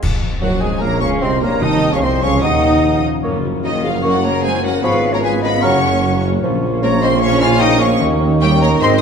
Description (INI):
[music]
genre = classical, dramatic, fast romantic movement for symphony orchestra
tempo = 150 BPM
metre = 4/4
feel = straight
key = Bb minor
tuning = A4 = 440 Hz
[part]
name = mellow bassoon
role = accompaniment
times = 0.0-9.0 s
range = Eb3 to Eb4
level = -23 LUFS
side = equal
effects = none
[part]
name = concert harp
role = arpeggios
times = 0.0-9.0 s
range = Gb2 to Bb5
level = -23 LUFS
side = left 8 dB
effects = none
[part]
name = clash cymbals and concert bass drum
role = percussion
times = 0.0-0.8 s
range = none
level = -24 LUFS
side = equal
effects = none
[part]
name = rich studio violin section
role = melody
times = 0.4-8.9 s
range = Eb5 to F6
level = -23 LUFS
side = left 3 dB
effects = none
[part]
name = hollow concert flute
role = second line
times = 0.4-9.0 s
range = Gb4 to A5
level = -23 LUFS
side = left 1 dB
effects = none
[part]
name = mellow oboe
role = second line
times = 0.4-9.0 s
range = Gb4 to Eb5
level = -25 LUFS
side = equal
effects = none
[part]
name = rich symphonic violin section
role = second line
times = 0.4-9.0 s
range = Eb4 to F5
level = -25 LUFS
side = left 3 dB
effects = none
[part]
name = warm studio viola section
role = accompaniment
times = 0.4-9.0 s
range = F3 to Gb4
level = -25 LUFS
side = right 1 dB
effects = none
[part]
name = dark French horn section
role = sustained chords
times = 0.4-9.0 s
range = Gb3 to Gb4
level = -23 LUFS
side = left 2 dB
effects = none
[part]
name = warm trombone section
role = sustained chords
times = 0.4-9.0 s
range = Gb2 to Bb3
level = -25 LUFS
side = right 4 dB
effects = none
[part]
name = warm studio cello section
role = bass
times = 0.4-9.0 s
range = Eb3 to F4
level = -23 LUFS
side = right 4 dB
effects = none
[part]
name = warm symphonic double bass section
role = bass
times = 0.4-9.0 s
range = Gb1 to Eb2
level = -22 LUFS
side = right 5 dB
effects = none
[part]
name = warm tuba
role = bass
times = 0.4-9.0 s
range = Gb1 to Eb2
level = -23 LUFS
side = right 4 dB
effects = none
[part]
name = timpani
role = percussion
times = 1.6-2.2 s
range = C3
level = -25 LUFS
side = right 3 dB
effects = none
[sound]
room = moderate scoring stage reverb, RT60 1.6 s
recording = dark, warm production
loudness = -13 LUFS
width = side -6 dB against mid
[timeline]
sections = 0.0-9.0 A section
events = band accent 0.0-0.4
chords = 0.0 Bbm; 1.6 F7; 2.4 Bbm; 3.2 Gbmaj7; 4.8 Db7/Ab; 5.6 Gb; 6.4 Bbm; 8.0 Eb7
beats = | 0.03 0.43 0.83 1.23 | 1.63 2.04 2.44 2.84 | 3.24 3.65 4.05 4.44 | 4.84 5.25 5.65 6.04 | 6.44 6.83 7.23 7.62 | 8.01 8.41 8.81